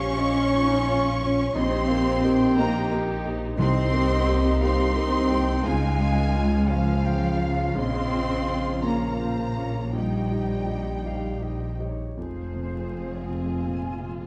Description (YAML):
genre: cinematic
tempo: 53-59 BPM (dotted quarters)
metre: 6/8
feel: rubato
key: F minor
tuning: A4 = 440 Hz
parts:
  - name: rich symphonic violin section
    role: melody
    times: 0.0-14.3 s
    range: Ab4 to Db6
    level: -38 LUFS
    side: equal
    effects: none
  - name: bright flute section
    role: second line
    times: 0.0-14.3 s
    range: C5 to Db6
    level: -39 LUFS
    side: equal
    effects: none
  - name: clear clarinet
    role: second line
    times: 0.0-12.2 s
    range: C5 to Ab5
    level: -37 LUFS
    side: equal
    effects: none
  - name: rich studio violin section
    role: second line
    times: 0.0-14.3 s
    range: Ab4 to Db6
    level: -40 LUFS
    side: equal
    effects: none
  - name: felt-muted upright piano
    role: accompaniment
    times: 0.0-14.3 s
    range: Bb1 to F5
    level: -34 LUFS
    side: equal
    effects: none
  - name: rich studio viola section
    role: accompaniment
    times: 0.0-14.3 s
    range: Db3 to G4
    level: -35 LUFS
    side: equal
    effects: none
  - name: mellow French horn section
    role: sustained chords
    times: 0.0-14.3 s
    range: F3 to F4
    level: -32 LUFS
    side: equal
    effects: none
  - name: rich studio cello section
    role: bass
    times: 0.0-14.3 s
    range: F2 to Db4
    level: -32 LUFS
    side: equal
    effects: none
  - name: rich studio double bass section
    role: bass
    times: 0.0-14.3 s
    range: F1 to Db2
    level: -30 LUFS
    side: equal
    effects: none
  - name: timpani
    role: percussion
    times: 3.6-4.6 s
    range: C3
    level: -30 LUFS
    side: equal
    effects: none
room: moderate scoring stage reverb, RT60 1.7 s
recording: dark, warm production, vinyl crackle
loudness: -24 LUFS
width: mono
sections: 0.0-12.2 A section; 12.2-14.3 B section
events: none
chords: 0.0 Bbm; 1.6 Eb/Bb; 3.6 Cm7; 5.7 Db; 7.8 Bbm; 9.9 Eb/Bb; 12.2 Fm